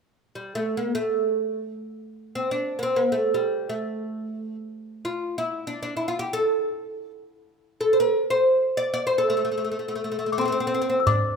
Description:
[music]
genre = Arabic maqam ensemble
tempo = free time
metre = none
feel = none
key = A maqam bayati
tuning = A4 = 438 Hz
[part]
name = oud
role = melody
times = 0.4-11.4 s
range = G3 to D5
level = -23 LUFS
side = right 1 dB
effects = none
[part]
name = small celesta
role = second line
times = 10.3-11.4 s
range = C6 to E6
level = -26 LUFS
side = left 7 dB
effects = none
[part]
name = darbuka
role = percussion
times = 11.1-11.3 s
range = none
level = -22 LUFS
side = equal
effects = none
[sound]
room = light reverb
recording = minimal, uncompressed stereo recording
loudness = -22 LUFS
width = side -5 dB against mid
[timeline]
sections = 0.1-11.1 A section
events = none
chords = none

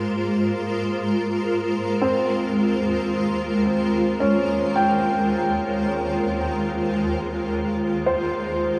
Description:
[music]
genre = ambient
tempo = 55 BPM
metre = 4/4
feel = straight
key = unclear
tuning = A4 = 439 Hz
[part]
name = granular cloud pad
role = sustained chords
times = 0.0-8.8 s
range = Eb2 to C5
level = -24 LUFS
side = equal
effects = built-in reverb
[part]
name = felt-muted upright piano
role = arpeggios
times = 0.0-8.8 s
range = C4 to G5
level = -27 LUFS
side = equal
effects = delay
[part]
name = organ-like drone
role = drone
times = 0.0-8.8 s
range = Bb3 to F4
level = -41 LUFS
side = equal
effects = none
[sound]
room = wet huge ambient reverb, RT60 7.7 s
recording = dark, warm production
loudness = -22 LUFS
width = mono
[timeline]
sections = 0.0-8.8 A section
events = none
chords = 0.0 Abadd9; 2.0 Eb

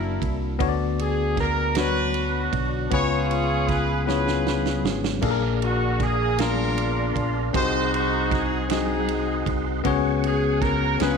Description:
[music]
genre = slow gospel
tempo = 52 BPM (dotted quarters)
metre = 6/8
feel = straight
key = unclear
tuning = A4 = 439 Hz
[part]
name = clear horn section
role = melody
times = 0.0-11.2 s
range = D4 to C#5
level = -26 LUFS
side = right 2 dB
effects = slapback echo
[part]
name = bell-like tine electric piano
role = accompaniment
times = 0.0-11.2 s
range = A#2 to A5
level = -25 LUFS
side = left 11 dB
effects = medium stereo tremolo
[part]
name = fingered electric bass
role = bass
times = 0.0-11.2 s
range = F#1 to D2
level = -27 LUFS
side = right 2 dB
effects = none
[part]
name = swinging big-band drum kit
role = drums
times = 0.2-11.2 s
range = crash cymbal, kick drum, ride cymbal, snare drum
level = -30 LUFS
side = right 6 dB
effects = none
[part]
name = tonewheel organ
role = sustained chords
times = 5.2-11.2 s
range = B3 to C#6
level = -33 LUFS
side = right 13 dB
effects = slow rotary speaker, overdrive, chorus vibrato
[sound]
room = light reverb, small room ambience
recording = 1960s-style stereo with parts hard left and right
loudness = -21 LUFS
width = side -5 dB against mid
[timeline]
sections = 0.0-11.2 A section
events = drum fill 4.1-5.2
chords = 0.0 F#7alt; 0.6 Bm/D; 2.9 C#7; 5.2 A#7; 7.5 G#7/B#; 9.8 C#7sus4

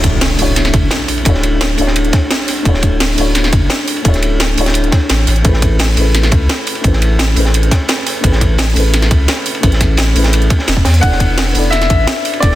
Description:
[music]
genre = liquid drum and bass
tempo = 172 BPM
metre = 4/4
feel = straight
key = A major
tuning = A4 = 440 Hz
[part]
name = felt-muted upright piano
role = accompaniment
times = 0.0-12.6 s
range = A3 to D5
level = -19 LUFS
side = left 2 dB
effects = tape echo
[part]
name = saturated sub bass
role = bass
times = 0.0-12.6 s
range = D1 to E2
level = -14 LUFS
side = equal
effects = none
[part]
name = crunchy breakbeat drum kit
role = drums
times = 0.0-12.6 s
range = hi-hat, ride cymbal, snare drum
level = -20 LUFS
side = equal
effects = high-pass filter on cymbals, high-pass filter on hats, high-pass filter on snare, high-pass filter on room
[part]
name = drum and bass drum kit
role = drums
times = 0.0-12.5 s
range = hi-hat, snare drum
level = -18 LUFS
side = right 1 dB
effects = overdrive
[part]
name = electronic kick drum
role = drums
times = 0.0-12.5 s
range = none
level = -12 LUFS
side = equal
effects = overdrive
[part]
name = impact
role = sound effects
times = 0.0-1.3 s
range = none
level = -21 LUFS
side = equal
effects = none
[part]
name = clear baby grand piano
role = melody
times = 11.0-12.6 s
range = D5 to F#5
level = -16 LUFS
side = left 2 dB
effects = tape echo
[sound]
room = light reverb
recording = dense, heavily limited modern master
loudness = -10 LUFS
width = side -14 dB against mid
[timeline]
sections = 0.0-12.6 A section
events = impact 0.0-1.3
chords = 0.0 Dmaj9; 5.3 Amaj9; 10.9 E7sus4

